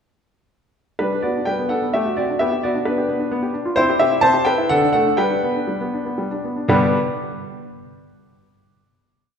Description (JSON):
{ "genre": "classical-period piano sonatina", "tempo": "118-133 BPM", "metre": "3/4", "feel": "straight", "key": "G major", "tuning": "A4 = 439 Hz", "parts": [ { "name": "clear concert grand piano", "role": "solo", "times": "1.0-7.0 s", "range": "G2 to A5", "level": "-17 LUFS", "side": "equal", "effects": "none" } ], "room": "wet concert hall reverb, RT60 1.9 s", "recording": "recorded in a church or concert hall", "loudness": "-17 LUFS", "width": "side -7 dB against mid", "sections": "1.0-6.7 A section; 6.7-8.2 final chord", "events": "slowing down 3.1-6.7", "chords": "1.0 G; 1.9 D7/A; 2.4 G/B; 3.3 G7/B; 3.8 C; 4.7 D; 5.2 G" }